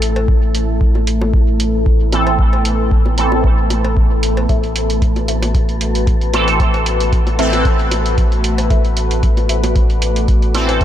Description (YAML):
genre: dub techno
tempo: 114 BPM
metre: 4/4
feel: swing 54% on 16ths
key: A dorian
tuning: A4 = 440 Hz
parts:
  - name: deep dark ambient pad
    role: sustained chords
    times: 0.0-10.8 s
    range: A3 to B4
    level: -21 LUFS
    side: left 2 dB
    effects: chorus, built-in reverb, sidechain pumping
  - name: soft dub sub bass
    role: bass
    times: 0.0-10.8 s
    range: A1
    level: -18 LUFS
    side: equal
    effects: sidechain pumping
  - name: electronic hi-hat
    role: drums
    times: 0.0-10.8 s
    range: none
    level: -24 LUFS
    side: right 3 dB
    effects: overdrive
  - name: wind-like tuned noise texture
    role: texture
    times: 0.0-10.8 s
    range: A3 to D5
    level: -28 LUFS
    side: left 2 dB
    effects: built-in reverb, sidechain pumping
  - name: cowbell and bongos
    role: percussion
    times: 0.2-10.8 s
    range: none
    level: -28 LUFS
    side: equal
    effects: sidechain pumping on perc, dub echo
  - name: electronic kick drum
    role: drums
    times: 0.3-10.8 s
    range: none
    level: -15 LUFS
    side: equal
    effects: none
  - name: resonant sweep polysynth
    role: stabs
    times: 2.1-10.8 s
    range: E3 to A4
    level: -20 LUFS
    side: right 2 dB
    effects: chorus, phaser, sidechain pumping, dub echo
  - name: warbly dusty pluck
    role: riff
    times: 4.5-10.8 s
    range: A4 to E5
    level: -28 LUFS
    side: left 2 dB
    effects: wide subtle chorus, sidechain pumping, dub echo
room: digital ambience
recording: none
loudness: -12 LUFS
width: side -11 dB against mid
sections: 0.0-10.8 A section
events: none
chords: 0.0 Am